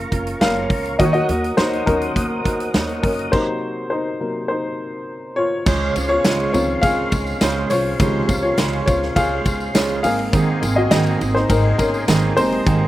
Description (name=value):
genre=piano-driven pop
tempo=103 BPM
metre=4/4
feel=straight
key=Db major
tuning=A4 = 439 Hz
part: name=warm upright piano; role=accompaniment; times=0.0-12.9 s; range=C3 to F5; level=-20 LUFS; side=left 2 dB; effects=slapback echo
part: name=tonewheel organ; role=sustained chords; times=0.0-12.9 s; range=Ab4 to Eb6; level=-29 LUFS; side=left 1 dB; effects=chorus vibrato, slow rotary speaker
part: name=fingerpicked steel-string acoustic guitar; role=riff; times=0.0-12.9 s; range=Ab2 to C5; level=-22 LUFS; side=right 4 dB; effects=none
part: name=upright bass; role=bass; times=0.0-12.9 s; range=Gb1 to Eb2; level=-25 LUFS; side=equal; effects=none
part: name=huge arena drum kit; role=drums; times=0.1-12.8 s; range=crash cymbal, hi-hat, kick drum, ride cymbal, snare drum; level=-22 LUFS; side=equal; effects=none
part: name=tambourine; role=percussion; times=5.7-12.8 s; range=none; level=-36 LUFS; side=left 4 dB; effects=none
room=little or no reverb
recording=recorded outdoors, with no room sound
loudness=-16 LUFS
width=side -15 dB against mid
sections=0.0-5.7 A section; 5.7-12.9 B section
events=upright piano solo 0.0-5.7, 5.7-12.9; stop 3.3-5.7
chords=0.0 Gbmaj7; 1.0 Ebm; 3.3 Cm7b5; 5.7 Dbmaj7; 10.0 Abadd9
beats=0.41 | 0.99 1.58 2.16 2.75 | 3.33 3.91 4.50 5.08 | 5.66 6.25 6.83 7.42 | 8.00 8.58 9.16 9.75 | 10.33 10.91 11.50 12.08 | 12.66